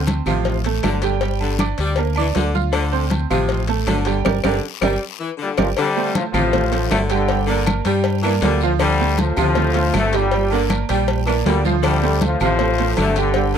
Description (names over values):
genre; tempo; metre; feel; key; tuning
latin, salsa; 158 BPM; 4/4; straight; D minor; A4 = 439 Hz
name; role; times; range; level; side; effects
bright concert grand piano; accompaniment; 0.0-13.6 s; F3 to F6; -22 LUFS; right 19 dB; none
deep dub fingered electric bass; bass; 0.0-13.6 s; G1 to G2; -21 LUFS; left 1 dB; none
congas; percussion; 0.1-13.6 s; none; -25 LUFS; left 2 dB; none
cowbell; percussion; 0.1-13.5 s; none; -27 LUFS; left 10 dB; none
guiro; percussion; 0.1-13.6 s; none; -35 LUFS; left 22 dB; none
timbales and agogo bells; percussion; 0.1-13.6 s; none; -29 LUFS; right 7 dB; none
edgy saxophone section; second line; 0.3-13.6 s; C3 to G3; -24 LUFS; left 6 dB; none
claves; percussion; 0.3-13.2 s; none; -32 LUFS; left 11 dB; none
brilliant trombone section; melody; 5.4-13.5 s; G2 to A3; -21 LUFS; left 5 dB; none
room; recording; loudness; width
light reverb; dry, close 1970s-style studio recording; -16 LUFS; side -8 dB against mid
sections
0.0-5.8 A section; 5.8-13.6 B section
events
band accent 4.3-5.8; drum fill 5.0-5.8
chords
0.0 Dm7; 1.2 Gm; 2.7 Dm7; 4.3 Gm; 5.8 Dm7; 7.3 Gm; 8.8 Dm7; 10.3 Gm; 11.8 Dm7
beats
0.07 0.45 0.83 | 1.21 1.59 1.98 2.35 | 2.74 3.12 3.50 3.88 | 4.26 4.64 5.02 5.40 | 5.78 6.16 6.54 6.92 | 7.29 7.67 8.05 8.43 | 8.81 9.19 9.57 9.95 | 10.32 10.70 11.08 11.46 | 11.84 12.21 12.59 12.97 | 13.35